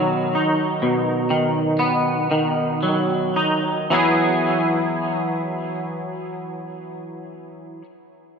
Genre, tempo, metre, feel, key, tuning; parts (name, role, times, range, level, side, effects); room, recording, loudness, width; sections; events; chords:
rock; 36-43 BPM (dotted quarters); 6/8; straight; E major; A4 = 440 Hz
twangy electric guitar; solo; 0.0-7.9 s; B2 to G#4; -19 LUFS; equal; analog chorus, diffuse ambient delay
wet plate reverb, RT60 3.6 s; dreamy mix soaked in reverb; -18 LUFS; side -6 dB against mid
0.0-3.9 A section; 3.9-7.3 B section
slowing down 0.0-3.9
0.0 B; 3.9 Eadd9